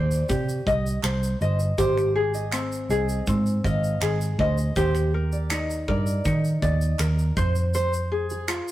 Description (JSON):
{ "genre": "acoustic pop", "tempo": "80 BPM", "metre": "4/4", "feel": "straight", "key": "unclear", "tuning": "A4 = 440 Hz", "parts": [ { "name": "ukulele", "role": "accompaniment", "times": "0.0-8.7 s", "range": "C4 to Eb5", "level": "-27 LUFS", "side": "left 2 dB", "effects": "none" }, { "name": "fingerpicked plugged-in steel-string acoustic guitar", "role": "arpeggios", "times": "0.0-8.5 s", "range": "Ab4 to F5", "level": "-33 LUFS", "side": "right 4 dB", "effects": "none" }, { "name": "vintage muted picked electric bass", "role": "bass", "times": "0.0-8.6 s", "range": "G1 to Eb3", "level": "-24 LUFS", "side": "right 1 dB", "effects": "none" }, { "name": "modern studio drum kit", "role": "drums", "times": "0.1-8.7 s", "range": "finger snaps, kick drum, shaker", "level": "-30 LUFS", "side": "right 1 dB", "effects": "none" }, { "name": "group handclap", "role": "percussion", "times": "1.0-8.7 s", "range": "none", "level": "-40 LUFS", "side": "right 4 dB", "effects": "none" } ], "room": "moderate stone room reverb, RT60 1.2 s", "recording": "rough rehearsal-room recording, warm saturation", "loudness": "-21 LUFS", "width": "side -14 dB against mid", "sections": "0.0-8.7 A section", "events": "none", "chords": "0.0 Cmadd9; 1.8 Abmaj7; 4.8 Ebmaj7; 7.4 Fm7" }